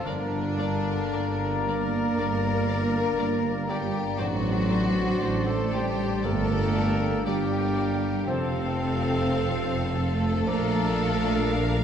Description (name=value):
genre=classical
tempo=51-62 BPM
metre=4/4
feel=rubato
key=unclear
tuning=A4 = 440 Hz
part: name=bright clarinet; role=second line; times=0.0-11.8 s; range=C4 to Bb4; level=-37 LUFS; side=left 2 dB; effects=none
part: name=mellow flute section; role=second line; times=0.0-10.9 s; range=G5 to Bb5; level=-38 LUFS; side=left 8 dB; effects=none
part: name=warm oboe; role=second line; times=0.0-10.9 s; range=C5 to D5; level=-39 LUFS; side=equal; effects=none
part: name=warm symphonic violin section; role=second line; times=0.0-11.8 s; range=C4 to Bb4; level=-33 LUFS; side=left 4 dB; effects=none
part: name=rich symphonic viola section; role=accompaniment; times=0.0-11.8 s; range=A3 to C5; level=-36 LUFS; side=right 2 dB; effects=none
part: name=dark trombone section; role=sustained chords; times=0.0-11.8 s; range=D3 to D4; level=-37 LUFS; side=right 4 dB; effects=none
part: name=concert harp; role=arpeggios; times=0.0-11.8 s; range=F2 to D5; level=-36 LUFS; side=left 8 dB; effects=none
part: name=mellow trumpet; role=stabs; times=0.0-11.8 s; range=A4 to C5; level=-36 LUFS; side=right 1 dB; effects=none
part: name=mellow tuba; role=bass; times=0.0-11.8 s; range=F1 to Bb1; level=-32 LUFS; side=right 3 dB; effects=none
part: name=rich symphonic cello section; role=bass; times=0.0-11.8 s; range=C3 to Bb3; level=-31 LUFS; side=right 4 dB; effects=none
part: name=rich studio violin section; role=melody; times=0.1-11.8 s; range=D5 to F5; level=-38 LUFS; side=left 4 dB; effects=none
part: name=mellow bassoon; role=accompaniment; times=0.1-10.9 s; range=F3 to C4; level=-37 LUFS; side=equal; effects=none
part: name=mellow French horn section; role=sustained chords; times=0.1-11.8 s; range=C3 to Bb3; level=-34 LUFS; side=left 3 dB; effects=none
part: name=warm symphonic double bass section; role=bass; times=0.1-11.8 s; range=F1 to Bb1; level=-31 LUFS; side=right 2 dB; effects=none
room=wet scoring stage reverb, RT60 1.6 s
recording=dark, warm production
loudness=-23 LUFS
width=side -8 dB against mid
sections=0.0-11.8 A section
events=none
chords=0.1 Gm; 4.2 D7/A; 6.2 Gm; 8.3 F; 10.5 Bbmaj7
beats=| 0.06 1.13 2.19 3.19 | 4.19 5.21 6.24 7.25 | 8.27 9.35 10.47 11.51